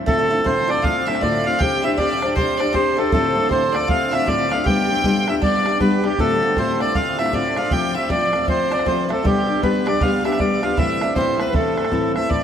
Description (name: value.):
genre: celtic folk, Celtic hornpipe.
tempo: 157 BPM.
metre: 4/4.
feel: swing 62% on 8ths.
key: unclear.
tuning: A4 = 445 Hz.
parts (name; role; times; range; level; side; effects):
fingerpicked steel-string acoustic guitar; accompaniment; 0.0-12.4 s; D2 to C5; -21 LUFS; left 3 dB; none.
accordion; melody; 0.1-12.4 s; G4 to G5; -20 LUFS; right 1 dB; none.
Irish bouzouki; second line; 0.1-12.1 s; G3 to G4; -28 LUFS; right 3 dB; none.
bright fiddle; second line; 0.1-12.4 s; G4 to G5; -29 LUFS; left 1 dB; none.
bodhran; percussion; 0.1-12.4 s; none; -26 LUFS; right 2 dB; none.
room: wet cathedral reverb, RT60 5.6 s.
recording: in a vast, echoing space.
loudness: -17 LUFS.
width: side -8 dB against mid.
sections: 0.1-12.3 A section.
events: none.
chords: 0.1 Dm7; 1.6 Csus2; 3.1 Dm7; 4.7 G; 6.2 Dm7; 7.7 F; 9.2 G; 10.8 Am.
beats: | 0.07 0.45 0.83 1.22 | 1.60 1.98 2.36 2.74 | 3.13 3.51 3.89 4.27 | 4.66 5.04 5.42 5.80 | 6.18 6.57 6.95 7.33 | 7.71 8.10 8.48 8.86 | 9.24 9.63 10.01 10.39 | 10.78 11.16 11.54 11.93 | 12.31.